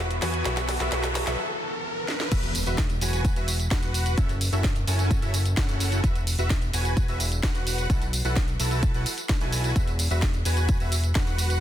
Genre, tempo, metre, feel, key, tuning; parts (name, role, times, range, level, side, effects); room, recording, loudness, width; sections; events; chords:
EDM, festival progressive house; 129 BPM; 4/4; straight; E major; A4 = 442 Hz
lush unison pad; sustained chords; 0.0-2.3 s; E3 to A4; -38 LUFS; left 2 dB; chorus, sidechain pumping
fat analog bass; bass; 0.0-11.6 s; E1 to E2; -26 LUFS; equal; sidechain pumping
riser and impact; sound effects; 0.1-4.2 s; -34 LUFS; equal
house drum kit; drums; 0.1-11.6 s; crash cymbal, hi-hat, snare drum, tambourine; -30 LUFS; equal
clean electric guitar; accompaniment; 0.2-1.3 s; F#3 to F#4; -33 LUFS; right 2 dB; vibrato effect, sidechain pumping, tape echo
dense compressed supersaw; riff; 0.2-11.6 s; C#4 to A5; -31 LUFS; equal; sidechain pumping, tape echo
electronic kick drum; drums; 2.3-11.2 s; -24 LUFS; equal
little or no reverb; dense, heavily limited modern master; -22 LUFS; side -11 dB against mid
0.0-2.3 A section; 2.3-11.6 B section
build-up 0.0-2.3; drum fill 0.0-1.4, 2.1; filter sweep on analog synth pad 0.0-2.3; riser 0.1-2.3; break 1.4-2.3; drop 2.3-11.6; impact 2.3-4.2
0.5 B7sus4; 2.3 Esus2; 4.2 F#m7; 6.0 Esus2; 7.9 B7sus4; 9.8 Esus2